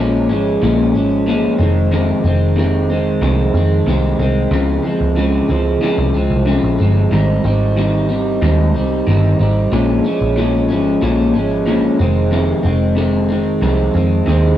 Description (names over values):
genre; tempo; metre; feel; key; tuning
indie pop, bedroom pop; 92 BPM; 4/4; straight; unclear; A4 = 441 Hz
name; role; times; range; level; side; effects
electric guitar through a small old amp; accompaniment; 0.0-14.6 s; F2 to Eb4; -15 LUFS; equal; wide subtle chorus, warbly pitch drift
vintage muted picked electric bass; bass; 0.0-14.5 s; F1 to F2; -16 LUFS; equal; tube saturation
room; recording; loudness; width
little or no reverb; dry, gritty hardware recording, cassette tape, small room ambience; -13 LUFS; side -12 dB against mid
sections
0.0-14.6 A section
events
none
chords
0.0 Bbm7; 1.6 Fm7; 4.5 Dbmaj7; 7.1 Abmaj7; 9.7 Bbm7; 12.0 Fm7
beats
0.62 1.27 | 1.92 2.57 3.22 3.87 | 4.52 5.17 5.82 6.47 | 7.12 7.77 8.42 9.07 | 9.72 10.37 11.02 11.67 | 12.32 12.97 13.62 14.27